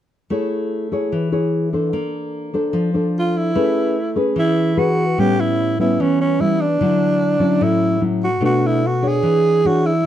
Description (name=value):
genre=bossa nova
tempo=148 BPM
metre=4/4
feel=straight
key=A major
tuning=A4 = 440 Hz
part: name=nylon-string guitar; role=accompaniment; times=0.3-10.0 s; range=A2 to C#5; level=-18 LUFS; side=left 2 dB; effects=none
part: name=growling alto saxophone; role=melody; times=3.2-10.1 s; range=C#4 to G#4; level=-18 LUFS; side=right 3 dB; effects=none
room=moderate studio reverb, RT60 0.5 s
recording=dark, warm production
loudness=-16 LUFS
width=side -11 dB against mid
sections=0.3-3.6 A section; 3.6-10.1 B section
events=none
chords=0.3 Amaj7; 1.9 Bbmaj9; 3.6 Amaj9; 5.2 A9; 6.8 Dmaj9; 8.4 Bm7; 9.2 E6